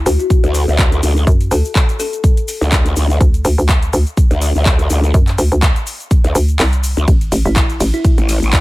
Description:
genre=bass house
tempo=124 BPM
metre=4/4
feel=swing 56% on 16ths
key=A dorian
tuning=A4 = 438 Hz
part: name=hollow knocking FM bass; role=bass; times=0.0-7.9 s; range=A1 to F#2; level=-14 LUFS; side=equal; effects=sidechain pumping
part: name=kalimba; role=melody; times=0.1-2.5, 7.5-8.1 s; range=E4 to A4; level=-23 LUFS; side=left 3 dB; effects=digital delay
part: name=garage drum kit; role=drums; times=0.1-8.6 s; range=handclaps, hi-hat, ride cymbal, shaker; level=-21 LUFS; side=left 1 dB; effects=none
part: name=electronic kick drum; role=drums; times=0.3-8.6 s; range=none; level=-12 LUFS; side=equal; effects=none
part: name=growl bass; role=bass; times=0.4-8.6 s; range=A1 to D2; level=-14 LUFS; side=equal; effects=chorus, overdrive, sidechain pumping
room=digital ambience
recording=none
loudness=-11 LUFS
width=side -19 dB against mid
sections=0.0-8.6 A section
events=kick drops out 6.6-7.1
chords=0.0 N.C.; 7.1 A5

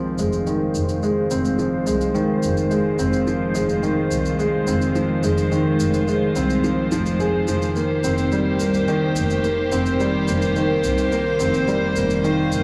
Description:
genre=piano and strings electronica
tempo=107 BPM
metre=4/4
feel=straight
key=F minor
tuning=A4 = 440 Hz
part: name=rich chamber string section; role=sustained chords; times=0.0-12.6 s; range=Eb3 to C5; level=-26 LUFS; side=equal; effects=low-pass filter
part: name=warm upright piano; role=riff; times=0.0-12.6 s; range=Eb3 to Ab4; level=-23 LUFS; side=equal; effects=digital delay
part: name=rich chamber double bass section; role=bass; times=0.2-12.6 s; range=F1 to C2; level=-28 LUFS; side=equal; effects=none
part: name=shaker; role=drums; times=0.2-12.6 s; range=none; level=-38 LUFS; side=equal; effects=overdrive, high-pass filter on perc
room=moderate lush hall reverb, RT60 1.7 s, small room ambience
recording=none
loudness=-20 LUFS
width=mono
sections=0.0-12.6 A section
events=build-up 0.0-12.6; filter sweep on string section 0.0-12.6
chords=0.0 Fm7; 7.8 Cm7/F

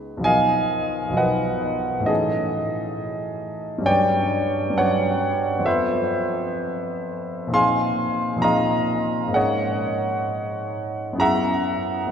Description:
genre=classical, impressionist solo piano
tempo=66 BPM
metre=4/4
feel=uneven beats, rubato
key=unclear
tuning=A4 = 445 Hz
part: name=clear grand piano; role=solo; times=0.0-12.1 s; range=B1 to C6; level=-20 LUFS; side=equal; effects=none
room=wet church reverb, RT60 3.8 s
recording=recorded in a church or concert hall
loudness=-20 LUFS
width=side -7 dB against mid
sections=0.0-12.1 A section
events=none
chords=0.3 Bmaj7#11; 2.1 Amaj7#11; 3.9 Gmaj7#11; 5.7 Fmaj7#11; 7.5 Bb9sus4; 9.4 Ab9sus4; 11.2 Gb9sus4

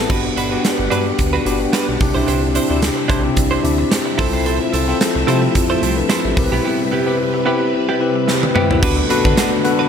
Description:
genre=1980s-style pop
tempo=110 BPM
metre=4/4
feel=swing 55% on 16ths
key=unclear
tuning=A4 = 440 Hz
part: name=bell-like tine electric piano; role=accompaniment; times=0.0-9.9 s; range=B3 to B5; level=-19 LUFS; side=left 4 dB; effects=analog chorus, shimmer reverb
part: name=direct-recorded clean electric guitar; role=riff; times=0.0-9.9 s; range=B3 to C5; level=-23 LUFS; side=right 6 dB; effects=lush chorus, tape echo, shimmer reverb
part: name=chorused synth bass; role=bass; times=0.0-9.6 s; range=G1 to D3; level=-22 LUFS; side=equal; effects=none
part: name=phased string machine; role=sustained chords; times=0.4-9.9 s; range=C3 to F#5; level=-24 LUFS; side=right 1 dB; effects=ensemble chorus, phaser, shimmer reverb
part: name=huge arena drum kit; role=drums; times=0.1-9.8 s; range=crash cymbal, hi-hat, kick drum, snare drum, tambourine, toms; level=-20 LUFS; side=right 1 dB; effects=none
room=moderate plate reverb, RT60 1.3 s, studio reverb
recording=none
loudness=-14 LUFS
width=side -7 dB against mid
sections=0.1-8.8 A section; 8.8-9.9 B section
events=drum fill 8.3-8.8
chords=0.1 Gmaj7; 2.0 Cadd9; 4.2 Fmaj7/C; 6.4 Cmaj7; 8.8 D6

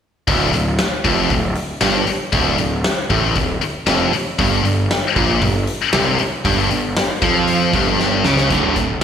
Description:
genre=hard rock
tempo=117 BPM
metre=4/4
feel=straight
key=D minor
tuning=A4 = 437 Hz
part: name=heavy high-gain guitar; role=riff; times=0.3-9.0 s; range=D2 to F3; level=-19 LUFS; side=left 9 dB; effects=distortion
part: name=overdriven semi-hollow guitar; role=riff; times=0.3-9.0 s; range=D2 to F3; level=-21 LUFS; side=right 8 dB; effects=slapback echo
part: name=fuzz picked electric bass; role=bass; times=0.3-9.0 s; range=D1 to F2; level=-20 LUFS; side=equal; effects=overdrive
part: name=huge arena drum kit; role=drums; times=0.3-9.0 s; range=hi-hat, kick drum, snare drum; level=-21 LUFS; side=left 1 dB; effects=none
room=light reverb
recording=live gig heard through the venue's PA, recital hall reverb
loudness=-14 LUFS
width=side -8 dB against mid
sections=0.3-8.5 A section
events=drum fill 8.0-8.5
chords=0.3 Dm; 4.4 Gm7b5; 8.5 D5

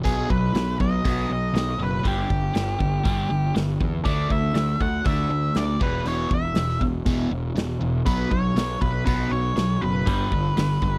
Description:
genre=classic rock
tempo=120 BPM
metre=4/4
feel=straight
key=unclear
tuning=A4 = 440 Hz
part: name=octave-fuzz lead guitar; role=melody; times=0.0-11.0 s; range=G4 to F#5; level=-30 LUFS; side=equal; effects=distortion
part: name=overdriven electric guitar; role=riff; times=0.0-11.0 s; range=E2 to D4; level=-28 LUFS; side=equal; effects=phaser
part: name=fuzz picked electric bass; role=bass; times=0.0-11.0 s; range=E1 to E2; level=-29 LUFS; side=equal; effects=overdrive
part: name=big rock drum kit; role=drums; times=0.1-10.9 s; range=hi-hat, kick drum, snare drum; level=-29 LUFS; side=equal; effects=none
room=little or no reverb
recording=dry, close 1970s-style studio recording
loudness=-23 LUFS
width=mono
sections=0.0-11.0 A section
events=none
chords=0.1 B; 2.1 G5; 4.1 D5; 5.8 E5; 8.1 B5; 10.1 G

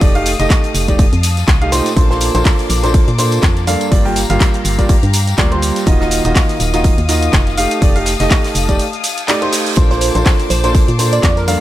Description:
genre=piano house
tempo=123 BPM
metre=4/4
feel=swing 56% on 16ths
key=Bb major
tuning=A4 = 440 Hz
part: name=rich studio string section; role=sustained chords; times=0.0-11.6 s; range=Bb3 to Eb6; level=-25 LUFS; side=left 7 dB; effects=sidechain pumping
part: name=clear upright piano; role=riff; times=0.0-11.6 s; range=G2 to G5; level=-17 LUFS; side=right 1 dB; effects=sidechain pumping, tape echo
part: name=organ-like FM bass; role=bass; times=0.0-11.6 s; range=Eb1 to Bb2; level=-17 LUFS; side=equal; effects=sidechain pumping
part: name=electronic kick drum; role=drums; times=0.0-11.3 s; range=none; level=-13 LUFS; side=equal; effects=small room ambience
part: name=garage drum kit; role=drums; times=0.0-11.6 s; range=handclaps, hi-hat, shaker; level=-20 LUFS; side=equal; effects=small room ambience
part: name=oversized low-tuned drum kit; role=drums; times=0.0-11.6 s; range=hi-hat, snare drum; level=-29 LUFS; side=right 2 dB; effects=none
part: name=tambourine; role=percussion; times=0.0-11.6 s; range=none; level=-28 LUFS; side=left 4 dB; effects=none
part: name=reverse cymbal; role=sound effects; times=9.0-9.8 s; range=none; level=-26 LUFS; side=right 7 dB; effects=none
part: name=glassy wavetable pluck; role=melody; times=9.9-11.5 s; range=Bb4 to D5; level=-20 LUFS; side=right 3 dB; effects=chorus
room=studio reverb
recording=none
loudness=-11 LUFS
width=side -14 dB against mid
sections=0.0-11.6 A section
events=break 8.8-9.8; reverse cymbal 9.0-9.8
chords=0.0 F13; 2.0 Bbmaj9; 3.9 Gm7; 5.9 Ebmadd9; 7.6 F13; 9.8 Bbmaj9

